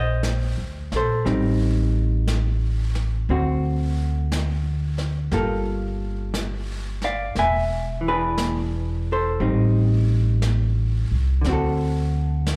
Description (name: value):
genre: jazz ballad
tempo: 59 BPM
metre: 4/4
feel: swing 67% on 8ths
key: unclear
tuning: A4 = 440 Hz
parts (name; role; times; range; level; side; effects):
- vintage hollow-body jazz guitar; accompaniment; 0.0-12.6 s; D3 to G#5; -28 LUFS; equal; slapback echo
- upright bass; bass; 0.0-12.6 s; E1 to D2; -25 LUFS; equal; none
- jazz brush drum kit; drums; 0.2-12.6 s; brushed snare drum, hi-hat, snare drum; -36 LUFS; equal; slapback echo
room: small room ambience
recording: live gig heard through the venue's PA, club reverb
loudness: -23 LUFS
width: mono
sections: 0.0-12.6 A section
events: none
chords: 0.0 Ebmaj7; 1.2 Am7b5; 3.3 D7; 5.3 Gm9; 7.4 E7; 9.4 Am7b5; 11.4 D7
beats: 0.23 | 1.25 2.27 3.29 4.30 | 5.32 6.34 7.36 8.38 | 9.40 10.42 11.44 12.47